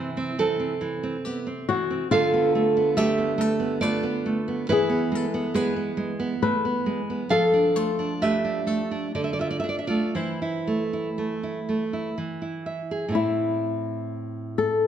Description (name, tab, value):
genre	romantic duo for nylon-string guitar and classical guitar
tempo	57-71 BPM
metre	3/4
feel	rubato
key	A minor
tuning	A4 = 440 Hz
part	flamenco guitar	melody	0.0-14.9 s	E4 to C5	-26 LUFS	left 6 dB	none
part	nylon-string guitar	accompaniment	0.0-14.9 s	A2 to F5	-24 LUFS	right 3 dB	none
room	moderate recital hall reverb, RT60 1.4 s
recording	dark, warm production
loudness	-23 LUFS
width	side -9 dB against mid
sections	0.0-13.1 A section; 13.1-14.9 B section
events	none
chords	0.0 Am/C; 2.1 Bm7b5/D; 4.7 E; 7.3 Dm/F; 9.2 Dm; 10.1 Am/E; 12.2 E; 13.1 Am